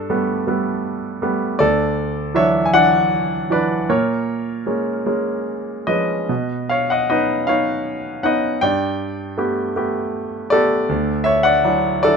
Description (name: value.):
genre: classical, lyrical solo piano.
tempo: 48-55 BPM (dotted quarters).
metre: 6/8.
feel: rubato.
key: unclear.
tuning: A4 = 440 Hz.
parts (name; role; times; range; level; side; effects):
clear concert grand piano; solo; 0.0-12.2 s; D2 to G#5; -17 LUFS; equal; none.
room: light reverb.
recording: close, detailed microphones.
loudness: -17 LUFS.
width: side -5 dB against mid.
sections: 0.0-12.2 A section.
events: none.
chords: 0.0 Gadd9; 1.6 Dadd9; 3.9 A#m7; 6.3 Badd9; 8.6 Gadd9; 10.9 Dadd9.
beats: 0.48 | 1.60 2.74 | 3.89 5.07 | 6.30 7.49 | 8.62 9.77 | 10.89 12.03.